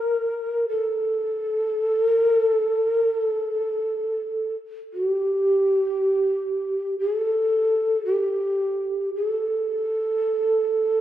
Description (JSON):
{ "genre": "japanese traditional, Japanese chamber music", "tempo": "free time", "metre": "none", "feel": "none", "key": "unclear", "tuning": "A4 = 438 Hz", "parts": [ { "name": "breathy mellow shakuhachi", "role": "solo", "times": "0.0-11.0 s", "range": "G4 to Bb4", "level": "-21 LUFS", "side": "equal", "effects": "none" } ], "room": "wet plate reverb, RT60 2.5 s", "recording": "heard from further back in the room", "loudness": "-21 LUFS", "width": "side -12 dB against mid", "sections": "0.0-11.0 A section", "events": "none", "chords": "none" }